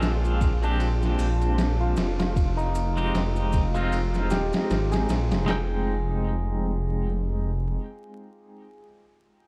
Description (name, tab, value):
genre	trip hop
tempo	77 BPM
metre	4/4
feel	swing 57% on 16ths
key	F minor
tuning	A4 = 440 Hz
part	santur	melody	0.0-8.8 s	D4 to Ab4	-36 LUFS	equal	dub echo
part	clean electric guitar	accompaniment	0.0-8.8 s	Ab3 to G5	-33 LUFS	equal	tremolo, tape echo
part	dark studio violin section	sustained chords	0.0-5.5 s	F4	-40 LUFS	equal	none
part	dark detuned saw bass	bass	0.0-7.8 s	Eb1 to Bb1	-28 LUFS	equal	none
part	trip hop sampler-style drum kit	drums	0.0-5.7 s	handclaps, hi-hat, kick drum, ride cymbal, snare drum	-31 LUFS	equal	overdrive
part	maracas	percussion	0.0-5.4 s	none	-51 LUFS	equal	none
room	digital ambience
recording	dark, warm production, vinyl crackle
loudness	-25 LUFS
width	mono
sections	0.0-5.5 A section; 5.5-8.6 B section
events	none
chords	0.0 Bb9; 2.4 Fm7